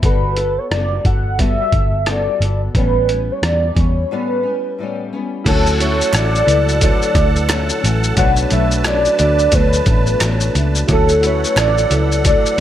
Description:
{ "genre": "indie pop, bedroom pop", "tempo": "88 BPM", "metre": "4/4", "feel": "swing 60% on 16ths", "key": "D major", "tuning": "A4 = 441 Hz", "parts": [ { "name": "warm velvety synth lead", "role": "melody", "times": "0.0-12.6 s", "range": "A4 to F#5", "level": "-18 LUFS", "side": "equal", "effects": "lush chorus, slapback echo" }, { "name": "flamenco guitar", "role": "accompaniment", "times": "0.0-12.6 s", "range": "A2 to A4", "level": "-24 LUFS", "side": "left 5 dB", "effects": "analog chorus, warbly pitch drift" }, { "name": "vintage muted picked electric bass", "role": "bass", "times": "0.0-12.3 s", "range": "F#1 to E2", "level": "-18 LUFS", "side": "equal", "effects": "none" }, { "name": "trip hop sampler-style drum kit", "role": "drums", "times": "0.0-12.6 s", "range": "crash cymbal, hi-hat, kick drum, rim click, shaker", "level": "-18 LUFS", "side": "equal", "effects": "none" }, { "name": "warm analog keys", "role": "accompaniment", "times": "5.4-12.6 s", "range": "D4 to D5", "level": "-24 LUFS", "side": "right 3 dB", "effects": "chorus" }, { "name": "musette accordion", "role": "sustained chords", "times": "5.5-12.6 s", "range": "A4 to A5", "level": "-25 LUFS", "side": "right 4 dB", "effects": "none" }, { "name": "group handclap", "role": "percussion", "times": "6.1-11.8 s", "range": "none", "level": "-28 LUFS", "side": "right 4 dB", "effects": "none" } ], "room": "digital ambience", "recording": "none", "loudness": "-13 LUFS", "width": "side -11 dB against mid", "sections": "0.0-5.5 A section; 5.5-12.6 B section", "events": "break 4.1-5.5", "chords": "0.0 Gmaj9; 2.7 A9; 5.5 Dmaj7; 8.2 Bm7; 10.9 Dmaj7", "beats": "| 0.02 0.70 1.38 2.06 | 2.75 3.42 4.11 4.79 | 5.46 6.14 6.82 7.50 | 8.18 8.86 9.54 10.22 | 10.90 11.58 12.26" }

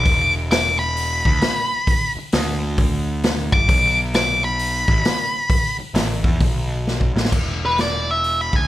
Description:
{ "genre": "blues rock power trio and southern rock", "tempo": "132 BPM", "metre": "4/4", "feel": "swing 64% on 8ths", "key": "unclear", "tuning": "A4 = 437 Hz", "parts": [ { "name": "octave-fuzz lead guitar", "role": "melody", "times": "0.0-8.7 s", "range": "B4 to D6", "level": "-19 LUFS", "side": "left 1 dB", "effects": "distortion" }, { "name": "fuzz picked electric bass", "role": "bass", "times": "0.0-8.7 s", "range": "E1 to E2", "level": "-23 LUFS", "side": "equal", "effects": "overdrive" }, { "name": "vintage drum kit", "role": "drums", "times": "0.1-8.6 s", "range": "crash cymbal, hi-hat, kick drum, snare drum", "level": "-20 LUFS", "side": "equal", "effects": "none" } ], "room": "light reverb", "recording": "band playing live in one room", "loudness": "-17 LUFS", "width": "side -15 dB against mid", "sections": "0.0-7.3 A section; 7.3-8.7 B section", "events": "lead electric guitar solo 0.0-7.3; drum fill 6.9-7.3", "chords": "0.1 E5; 2.3 N.C.; 3.5 G5; 3.7 Asus2; 7.3 E7(no3)", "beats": "| 0.06 0.52 0.97 1.42 | 1.88 2.33 2.78 3.24 | 3.69 4.14 4.60 5.05 | 5.50 5.96 6.41 6.87 | 7.32 7.78 8.24" }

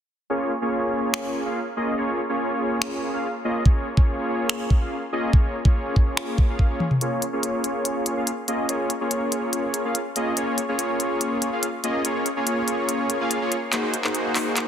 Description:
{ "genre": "future bass", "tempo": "143 BPM", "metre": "4/4", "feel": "half-time", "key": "Bb minor", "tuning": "A4 = 440 Hz", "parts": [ { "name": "soft supersaw", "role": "riff", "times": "0.3-14.7 s", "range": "Bb3 to F5", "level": "-24 LUFS", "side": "equal", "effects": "sidechain pumping, low-pass filter, dub echo" }, { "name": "trap drum kit", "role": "drums", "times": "1.1-14.7 s", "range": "finger snaps, handclaps, hi-hat, toms", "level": "-25 LUFS", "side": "left 1 dB", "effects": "soft clipping on snare" }, { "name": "electronic kick drum", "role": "drums", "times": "3.7-6.7 s", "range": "none", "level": "-17 LUFS", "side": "equal", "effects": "none" } ], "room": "light reverb, digital ambience", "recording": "dense, heavily limited modern master, high-pass filter", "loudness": "-21 LUFS", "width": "side -9 dB against mid", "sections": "0.3-7.0 A section; 7.0-14.7 B section", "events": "drum fill 6.8, 13.7-14.7; build-up 7.0-14.7; filter sweep on supersaw synth 7.0-14.7", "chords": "0.3 Bbm7; 13.7 Ab9", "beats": "| 0.30 0.72 1.14 1.56 | 1.98 2.40 2.82 3.24 | 3.66 4.08 4.50 4.92 | 5.33 5.75 6.17 6.59 | 7.01 7.43 7.85 8.27 | 8.69 9.11 9.53 9.95 | 10.37 10.79 11.21 11.63 | 12.05 12.47 12.89 13.31 | 13.73 14.14 14.56" }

